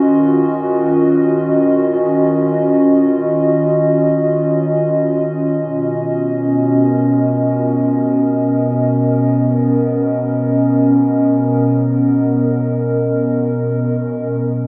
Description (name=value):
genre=ambient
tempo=free time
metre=none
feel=none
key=unclear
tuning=A4 = 440 Hz
part: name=warbly tape-like pad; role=solo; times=0.0-14.7 s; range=B2 to D#5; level=-15 LUFS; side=equal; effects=chorus, built-in reverb, tape echo
room=wet echo chamber reverb, RT60 2.1 s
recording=echo-heavy mix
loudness=-15 LUFS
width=mono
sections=0.0-14.4 A section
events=none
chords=0.0 D#m7; 5.6 Bmaj7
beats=free time